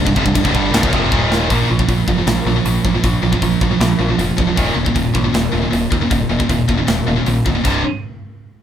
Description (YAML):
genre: heavy metal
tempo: 156 BPM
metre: 4/4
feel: straight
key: unclear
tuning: A4 = 440 Hz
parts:
  - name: heavy high-gain guitar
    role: riff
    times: 0.0-7.8 s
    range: C2 to Bb3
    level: -19 LUFS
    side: left 6 dB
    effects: distortion
  - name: heavy high-gain guitar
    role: riff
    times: 0.0-7.8 s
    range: C2 to Bb3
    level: -19 LUFS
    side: right 6 dB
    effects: distortion
  - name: growling picked electric bass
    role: bass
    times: 0.0-7.8 s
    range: C1 to Eb2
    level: -20 LUFS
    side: equal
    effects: overdrive
  - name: tight metal drum kit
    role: drums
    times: 0.1-7.7 s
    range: crash cymbal, hi-hat, kick drum, snare drum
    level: -20 LUFS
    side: equal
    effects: none
room: moderate studio reverb, RT60 0.5 s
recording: band playing live in one room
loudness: -13 LUFS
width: side -9 dB against mid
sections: 0.0-1.5 A section; 1.5-7.7 B section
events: drum fill 1.1-1.5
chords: 0.0 Cm; 1.1 Eb5; 1.5 Bb5; 4.6 Eb5; 7.7 C5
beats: 0.35 0.73 1.11 | 1.50 1.88 2.26 2.65 | 3.03 3.42 3.80 4.18 | 4.57 4.96 5.34 5.72 | 6.11 6.50 6.88 7.27 | 7.65